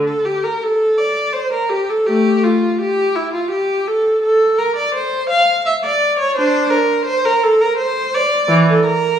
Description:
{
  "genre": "classical, baroque-style suite movement for unaccompanied viola",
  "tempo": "84 BPM",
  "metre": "3/4",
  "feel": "rubato",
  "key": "D minor",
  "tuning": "A4 = 440 Hz",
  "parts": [
    { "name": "clear viola", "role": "solo", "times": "0.0-9.2 s", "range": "E3 to F5", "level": "-14 LUFS", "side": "equal", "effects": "none" }
  ],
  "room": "wet recital hall reverb, RT60 1.6 s",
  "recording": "recorded in a church or concert hall, studio reverb",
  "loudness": "-14 LUFS",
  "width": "side -9 dB against mid",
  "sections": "0.0-9.2 A section",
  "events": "none",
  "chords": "none"
}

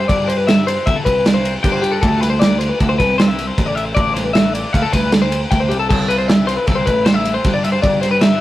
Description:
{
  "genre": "math rock and midwest emo",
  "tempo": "155 BPM",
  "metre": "5/4",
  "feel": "straight",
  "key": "unclear",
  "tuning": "A4 = 439 Hz",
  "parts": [
    { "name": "twelve-string electric guitar", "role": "arpeggios", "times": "0.0-8.4 s", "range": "G4 to G5", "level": "-18 LUFS", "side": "left 3 dB", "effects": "harmonic tremolo" },
    { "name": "overdriven picked electric bass", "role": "bass", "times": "0.0-8.4 s", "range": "A1 to G2", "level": "-20 LUFS", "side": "equal", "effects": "none" },
    { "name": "modern studio drum kit", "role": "drums", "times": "0.1-8.3 s", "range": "crash cymbal, kick drum, ride cymbal, snare drum", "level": "-16 LUFS", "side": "right 1 dB", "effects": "none" }
  ],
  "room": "light reverb",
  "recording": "rough rehearsal-room recording, warm saturation",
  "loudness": "-13 LUFS",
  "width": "side -15 dB against mid",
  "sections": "0.0-8.4 A section",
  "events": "none",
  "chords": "0.0 Am7 (rootless); 2.0 D7(no3); 5.9 C6"
}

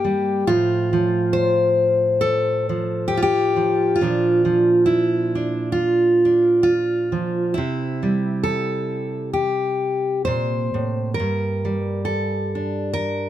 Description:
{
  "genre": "folk, solo fingerstyle acoustic guitar",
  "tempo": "67 BPM",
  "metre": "4/4",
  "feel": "straight",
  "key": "F major",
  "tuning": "A4 = 440 Hz",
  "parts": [
    { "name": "fingerpicked steel-string acoustic guitar", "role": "solo", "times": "0.0-13.3 s", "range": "G2 to C5", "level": "-18 LUFS", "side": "equal", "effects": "none" }
  ],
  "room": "little or no reverb",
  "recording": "close, detailed microphones",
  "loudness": "-18 LUFS",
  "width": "side -12 dB against mid",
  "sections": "0.0-13.3 A section",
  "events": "none",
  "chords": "0.5 F/A; 4.0 Bb; 7.6 C; 11.2 Gm"
}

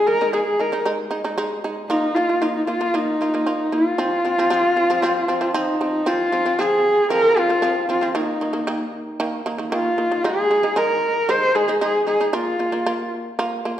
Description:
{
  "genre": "mongolian traditional, Mongolian folk",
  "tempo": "115 BPM",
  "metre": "4/4",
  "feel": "straight",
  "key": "F yu mode",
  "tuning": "A4 = 440 Hz",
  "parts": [
    { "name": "warm horsehead fiddle", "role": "melody", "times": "0.0-13.1 s", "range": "Eb4 to C5", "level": "-19 LUFS", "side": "equal", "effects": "none" },
    { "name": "shamisen", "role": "arpeggios", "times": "0.0-13.8 s", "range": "Eb3 to F4", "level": "-24 LUFS", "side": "right 2 dB", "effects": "none" }
  ],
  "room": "wet recital hall reverb, RT60 1.7 s",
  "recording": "none",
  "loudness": "-18 LUFS",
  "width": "side -11 dB against mid",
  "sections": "0.0-6.1 A section; 6.1-13.8 B section",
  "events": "none",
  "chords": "0.0 Ab5; 1.9 Bb5; 4.0 F5; 8.2 Eb5; 10.2 Ab5; 12.3 Bb5"
}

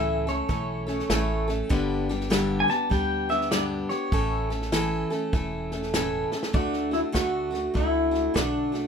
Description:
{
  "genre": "honky-tonk and classic country",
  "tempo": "99 BPM",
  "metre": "4/4",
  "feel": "swing 63% on 8ths",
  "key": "D major",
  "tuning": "A4 = 439 Hz",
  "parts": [
    { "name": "pedal steel guitar", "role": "melody", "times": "0.0-8.9 s", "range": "D4 to A5", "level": "-26 LUFS", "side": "left 1 dB", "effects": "none" },
    { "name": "picked steel-string acoustic guitar", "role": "accompaniment", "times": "0.0-8.9 s", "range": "G2 to A4", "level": "-27 LUFS", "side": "left 1 dB", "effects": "none" },
    { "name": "upright bass", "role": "bass", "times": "0.0-8.9 s", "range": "E1 to D2", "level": "-33 LUFS", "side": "equal", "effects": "none" },
    { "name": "natural country drum kit", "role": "drums", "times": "0.3-8.8 s", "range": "hi-hat, kick drum, snare drum", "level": "-29 LUFS", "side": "right 1 dB", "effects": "none" }
  ],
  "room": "light reverb",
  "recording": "minimal, uncompressed stereo recording",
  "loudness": "-23 LUFS",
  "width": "side -6 dB against mid",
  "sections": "0.0-6.5 A section; 6.5-8.9 B section",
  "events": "drum fill 6.2-6.5",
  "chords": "0.0 A; 1.7 G; 4.1 A; 6.5 D"
}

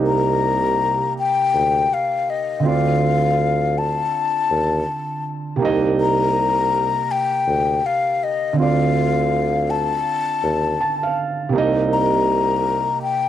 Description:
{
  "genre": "lo-fi hip hop",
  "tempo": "81 BPM",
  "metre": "4/4",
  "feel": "swing 63% on 16ths",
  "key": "C dorian",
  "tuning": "A4 = 440 Hz",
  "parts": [
    { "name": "felt-muted upright piano", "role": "accompaniment", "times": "0.0-13.3 s", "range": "C3 to A5", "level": "-22 LUFS", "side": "right 5 dB", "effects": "cassette tape, plate reverb" },
    { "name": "warm tuba", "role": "bass", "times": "0.0-13.0 s", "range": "C2 to Eb2", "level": "-22 LUFS", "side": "right 1 dB", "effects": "none" },
    { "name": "breathy mellow concert flute", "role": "melody", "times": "0.1-13.3 s", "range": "Eb5 to Bb5", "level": "-20 LUFS", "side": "left 6 dB", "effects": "plate reverb" }
  ],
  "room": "wet booth ambience, RT60 0.2 s",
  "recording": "home recording on cassette",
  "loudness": "-17 LUFS",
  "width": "side -11 dB against mid",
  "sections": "0.0-13.3 A section",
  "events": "felt piano fill 10.4-11.5",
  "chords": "0.0 Cm9; 2.6 Dm7; 5.6 Cm7; 8.6 Dm7; 11.5 Cm7"
}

